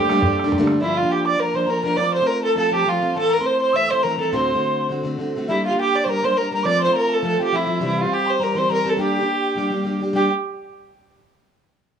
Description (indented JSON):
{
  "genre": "celtic folk, Celtic reel",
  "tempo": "206 BPM",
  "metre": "4/4",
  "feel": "swing 54% on 8ths",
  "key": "G dorian",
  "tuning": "A4 = 440 Hz",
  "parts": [
    { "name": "dark fiddle", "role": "melody", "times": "0.0-10.3 s", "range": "E4 to E5", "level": "-20 LUFS", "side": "right 3 dB", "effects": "cassette tape" },
    { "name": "hammered dulcimer", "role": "second line", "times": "0.0-2.8 s", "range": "G4 to E5", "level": "-31 LUFS", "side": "right 8 dB", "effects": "cassette tape" },
    { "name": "mellow wooden whistle", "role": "second line", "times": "0.0-10.3 s", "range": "E5 to E6", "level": "-27 LUFS", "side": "left 5 dB", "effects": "cassette tape" },
    { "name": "picked plugged-in steel-string acoustic guitar", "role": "accompaniment", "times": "0.0-10.3 s", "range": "D2 to G4", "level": "-23 LUFS", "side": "left 2 dB", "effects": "cassette tape" },
    { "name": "bodhran", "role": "percussion", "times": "0.1-0.7 s", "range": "none", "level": "-24 LUFS", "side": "right 1 dB", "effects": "none" }
  ],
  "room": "light reverb, small room ambience",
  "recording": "home recording on cassette",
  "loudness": "-18 LUFS",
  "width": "side -7 dB against mid",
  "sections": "0.8-10.2 A section; 10.2-11.3 B section",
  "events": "none",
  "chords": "0.0 Gmadd9; 0.8 Gm7; 2.0 F; 3.1 Am; 4.3 D7; 5.5 Gm; 6.7 F; 7.8 C; 9.0 Gm"
}